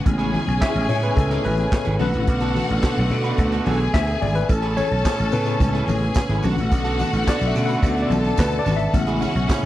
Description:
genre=disco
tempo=108 BPM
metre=4/4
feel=straight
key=B dorian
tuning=A4 = 439 Hz
part: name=clear studio string section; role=second line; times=0.0-9.7 s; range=F#4 to A5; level=-28 LUFS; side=left 2 dB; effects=none
part: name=electric guitar at the edge of break-up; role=accompaniment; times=0.0-9.7 s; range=C#4 to B4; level=-31 LUFS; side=right 6 dB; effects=wide subtle chorus
part: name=tine electric piano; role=accompaniment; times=0.0-9.7 s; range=C#3 to F#5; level=-25 LUFS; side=left 3 dB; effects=medium stereo tremolo
part: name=rich studio string section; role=sustained chords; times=0.0-9.7 s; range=A2 to C#4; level=-27 LUFS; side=right 2 dB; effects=none
part: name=vintage slap bass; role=bass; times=0.1-9.7 s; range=G#1 to B2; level=-23 LUFS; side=equal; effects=none
part: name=vintage drum kit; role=drums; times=0.1-9.7 s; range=handclaps, hi-hat, kick drum, snare drum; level=-20 LUFS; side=equal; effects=none
part: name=congas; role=percussion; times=0.2-9.6 s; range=none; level=-30 LUFS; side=left 4 dB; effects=none
part: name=tambourine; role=percussion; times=4.5-9.7 s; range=none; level=-42 LUFS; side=right 15 dB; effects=none
room=little or no reverb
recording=dry, close 1970s-style studio recording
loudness=-18 LUFS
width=side -14 dB against mid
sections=0.0-9.7 A section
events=tine electric piano solo 0.0-9.7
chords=0.1 Amaj7; 2.0 Bm7; 4.5 Amaj7; 6.4 Bm7; 8.9 Amaj7

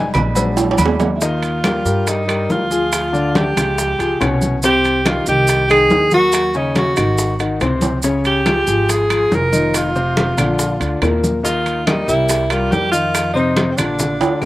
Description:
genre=Afro-Cuban jazz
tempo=141 BPM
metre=4/4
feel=straight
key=Eb major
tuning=A4 = 439 Hz
part: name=warm concert grand piano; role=accompaniment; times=0.0-14.5 s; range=Bb2 to G5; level=-20 LUFS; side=left 2 dB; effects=none
part: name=upright bass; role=bass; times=0.0-14.5 s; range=F1 to G2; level=-22 LUFS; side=right 1 dB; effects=none
part: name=agogo bells and timbales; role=percussion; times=0.1-14.5 s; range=none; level=-23 LUFS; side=right 6 dB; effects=slapback echo
part: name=claves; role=percussion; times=0.1-14.5 s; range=none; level=-28 LUFS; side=left 4 dB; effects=none
part: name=congas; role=percussion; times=0.1-14.5 s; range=none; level=-22 LUFS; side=equal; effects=none
part: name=cowbell and bongos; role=percussion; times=0.1-14.5 s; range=none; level=-27 LUFS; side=left 4 dB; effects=slapback echo
part: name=maracas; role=percussion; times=0.1-14.5 s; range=none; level=-27 LUFS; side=right 4 dB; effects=none
part: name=clear tenor saxophone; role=melody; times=1.2-14.5 s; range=C4 to Bb4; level=-17 LUFS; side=right 1 dB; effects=slapback echo
room=little or no reverb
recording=recorded outdoors, with no room sound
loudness=-14 LUFS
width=side -16 dB against mid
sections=0.0-1.2 A section; 1.2-14.5 B section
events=grand piano solo 0.0-1.2; drum fill 0.6-1.2, 7.8, 14.2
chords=0.4 Bbaug7; 1.2 Eb; 2.9 Ddim; 3.8 Db7; 4.6 Cm7; 6.3 Ebm7; 7.2 Ab7; 8.0 Db69; 9.7 F5; 10.6 Bb; 11.4 Eb6; 12.3 C5; 13.1 F5

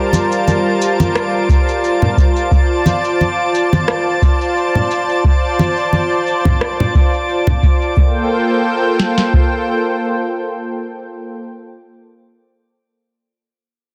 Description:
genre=sunset chillout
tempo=88 BPM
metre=4/4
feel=swing 54% on 16ths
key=G minor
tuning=A4 = 440 Hz
part: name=lush unison pad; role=sustained chords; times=0.0-11.5 s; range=G3 to A5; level=-19 LUFS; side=equal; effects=chorus
part: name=drifting glass-harmonics texture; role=texture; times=0.0-8.0 s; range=D5 to D6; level=-28 LUFS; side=equal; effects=chorus, built-in reverb
part: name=electronic cabasa and rim click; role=drums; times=0.1-7.9 s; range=none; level=-26 LUFS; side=equal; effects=overdrive, low-pass filter on perc, low-pass filter on hats, low-pass filter on snare, low-pass filter on room
part: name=congas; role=percussion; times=0.1-7.6 s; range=none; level=-19 LUFS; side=equal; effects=none
part: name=soft vintage rhythm box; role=drums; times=1.5-9.5 s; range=kick drum, snare drum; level=-15 LUFS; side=equal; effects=none
room=moderate plate reverb, RT60 2.1 s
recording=dense, heavily limited modern master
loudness=-15 LUFS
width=mono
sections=0.0-8.0 A section; 8.0-10.7 B section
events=filter sweep on drum 0.0-8.0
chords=0.0 Gm11; 2.5 Dm7; 8.0 Gm11

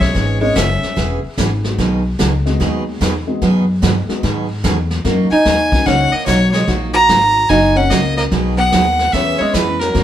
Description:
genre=country, western swing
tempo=147 BPM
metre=4/4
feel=swing 65% on 8ths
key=B major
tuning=A4 = 440 Hz
part: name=clear fiddle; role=melody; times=0.0-1.0, 5.3-10.0 s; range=A#4 to A#5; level=-16 LUFS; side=equal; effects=none
part: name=archtop guitar, miked and amplified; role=second line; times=0.0-1.0, 5.3-10.0 s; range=E3 to F#4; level=-18 LUFS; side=equal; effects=none
part: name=dark upright piano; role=accompaniment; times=0.0-10.0 s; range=F#3 to A#4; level=-23 LUFS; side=left 3 dB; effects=none
part: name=upright bass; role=bass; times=0.0-10.0 s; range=E1 to G#2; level=-18 LUFS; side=left 1 dB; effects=none
part: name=vintage brush drum kit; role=drums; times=0.0-10.0 s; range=brushed snare drum, hi-hat, kick drum, snare drum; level=-21 LUFS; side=equal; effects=none
part: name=picked steel-string acoustic guitar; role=accompaniment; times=0.1-10.0 s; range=B2 to G#4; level=-21 LUFS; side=right 4 dB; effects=none
room=moderate studio reverb, RT60 0.8 s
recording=band playing live in one room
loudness=-13 LUFS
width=side -11 dB against mid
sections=0.0-10.0 A section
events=none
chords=0.0 E6; 1.8 B6; 5.0 F#6; 8.3 B6; 9.1 E6

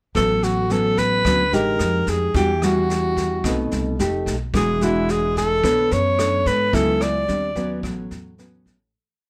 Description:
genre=bossa nova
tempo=109 BPM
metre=4/4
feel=straight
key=A major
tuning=A4 = 440 Hz
part: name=nylon-string guitar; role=accompaniment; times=0.1-8.9 s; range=A2 to C#5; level=-25 LUFS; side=equal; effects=none
part: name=breathy alto saxophone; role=melody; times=0.2-7.8 s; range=E4 to D5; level=-23 LUFS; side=equal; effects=none
part: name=upright bass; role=bass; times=0.2-8.9 s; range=E1 to G#2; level=-28 LUFS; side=equal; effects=none
part: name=jazz brush drum kit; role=drums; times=0.2-8.7 s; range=kick drum, rim click, snare drum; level=-32 LUFS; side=equal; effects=none
room=light reverb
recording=none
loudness=-20 LUFS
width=mono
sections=0.2-8.9 A section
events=fade-out 6.7-8.9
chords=0.2 A69; 1.3 D6; 1.8 Fm9; 2.3 Em9; 3.4 B7b9; 4.0 F9; 4.5 E9; 5.6 Bm9; 6.7 A69/C#; 7.3 D#6; 7.8 A69

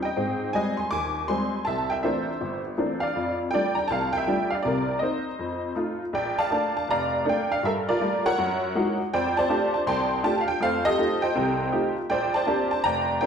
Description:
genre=solo jazz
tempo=161 BPM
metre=4/4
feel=swing 64% on 8ths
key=F major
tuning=A4 = 440 Hz
part: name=honky-tonk upright piano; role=solo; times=0.0-13.3 s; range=F1 to D6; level=-23 LUFS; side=equal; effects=none
room=wet large studio reverb, RT60 1.3 s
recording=heard from further back in the room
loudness=-23 LUFS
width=side -7 dB against mid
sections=0.0-6.1 A section; 6.1-13.3 B section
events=none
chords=0.2 Abmaj7; 1.7 C13; 3.2 F69; 4.6 Cm7; 5.4 F7; 6.1 Bbmaj7; 7.6 Gm9; 8.4 Gb13; 9.1 F69; 10.6 F9; 12.1 Bb69

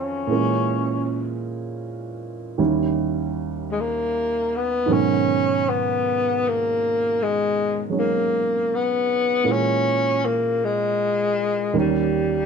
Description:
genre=jazz ballad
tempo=52 BPM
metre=4/4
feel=swing 66% on 8ths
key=G# minor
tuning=A4 = 438 Hz
part: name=breathy tenor saxophone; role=melody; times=0.0-12.5 s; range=G3 to C#4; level=-21 LUFS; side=left 2 dB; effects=none
part: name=warm upright piano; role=accompaniment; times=0.0-12.5 s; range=D#2 to C#5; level=-24 LUFS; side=right 5 dB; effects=none
room=light reverb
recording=none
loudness=-20 LUFS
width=side -6 dB against mid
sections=0.0-12.5 A section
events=none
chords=0.3 A#m7b5; 2.6 D#7b9; 4.9 G#m11; 9.4 A#m7b5; 11.7 D#7

